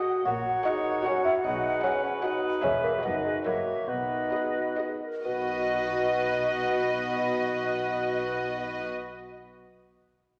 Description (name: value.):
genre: cinematic, playful, whimsical film cue.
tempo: 126-152 BPM.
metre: 3/4.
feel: straight.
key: B major.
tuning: A4 = 440 Hz.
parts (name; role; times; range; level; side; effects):
rich studio violin section; melody; 0.0-8.8 s; D#5 to F#5; -38 LUFS; equal; none.
hollow concert flute; second line; 0.0-8.8 s; D#5 to F#5; -35 LUFS; equal; none.
mellow clarinet; second line; 0.0-8.8 s; F#4 to A#4; -41 LUFS; equal; none.
mellow cor anglais; second line; 0.0-8.8 s; B4 to D#5; -39 LUFS; equal; none.
warm chamber violin section; second line; 0.0-8.8 s; B4 to D#5; -43 LUFS; equal; none.
dark studio viola section; accompaniment; 0.0-8.8 s; F#4 to G#4; -38 LUFS; equal; none.
warm French horn section; sustained chords; 0.0-8.8 s; D#4 to A#4; -37 LUFS; equal; none.
folk marimba with soft mallets; melody; 0.3-9.5 s; G#4 to F#5; -36 LUFS; equal; none.
warm bassoon; accompaniment; 0.3-8.8 s; G#3 to F#4; -34 LUFS; equal; none.
dark studio double bass section; bass; 0.3-8.8 s; E1 to B1; -51 LUFS; equal; none.
warm studio cello section; bass; 0.3-8.8 s; E2 to B2; -44 LUFS; equal; none.
room: wet scoring stage reverb, RT60 1.9 s.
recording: none.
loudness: -28 LUFS.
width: mono.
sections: 0.0-5.3 A section; 5.3-8.1 B section.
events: slowing down 2.0-5.3.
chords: 0.2 F#/A#; 1.4 B; 2.6 E; 3.0 B/F#; 3.5 F#7; 3.9 B.